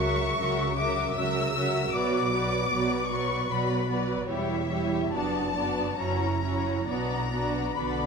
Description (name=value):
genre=classical, slow romantic movement for string orchestra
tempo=66-78 BPM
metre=3/4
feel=rubato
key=B minor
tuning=A4 = 440 Hz
part: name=warm symphonic violin section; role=melody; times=0.0-8.1 s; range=E5 to E6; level=-30 LUFS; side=left 4 dB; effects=none
part: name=warm studio violin section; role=second line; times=0.0-8.1 s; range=F#4 to E5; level=-32 LUFS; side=left 2 dB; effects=none
part: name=warm symphonic viola section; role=accompaniment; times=0.0-8.1 s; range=F#3 to F#4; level=-31 LUFS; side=right 2 dB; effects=none
part: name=dark symphonic cello section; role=bass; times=0.0-8.1 s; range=E2 to D3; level=-33 LUFS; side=right 3 dB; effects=none
part: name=warm symphonic double bass section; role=bass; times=0.0-8.1 s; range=E1 to C#2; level=-35 LUFS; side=right 3 dB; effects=none
room=moderate scoring stage reverb, RT60 2.1 s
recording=none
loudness=-25 LUFS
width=side -5 dB against mid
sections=0.0-8.1 A section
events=none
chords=0.0 F#7/C#; 1.9 Bm; 4.3 C#dim/E; 5.1 Bm/F#; 6.0 F#7; 6.9 Bm